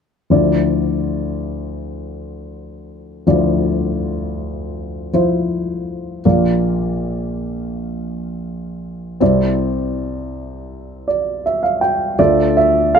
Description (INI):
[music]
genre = folk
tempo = 81 BPM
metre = 4/4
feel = straight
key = D minor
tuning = A4 = 440 Hz
[part]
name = dark baby grand piano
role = melody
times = 0.3-13.0 s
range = Bb1 to G5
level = -16 LUFS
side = equal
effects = none
[sound]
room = little or no reverb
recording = close, detailed microphones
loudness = -16 LUFS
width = side -7 dB against mid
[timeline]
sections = 0.3-12.2 A section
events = grand piano fill 10.7-12.2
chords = 0.3 Dmadd9; 6.2 Bb; 9.2 Cadd9; 12.2 Dmadd9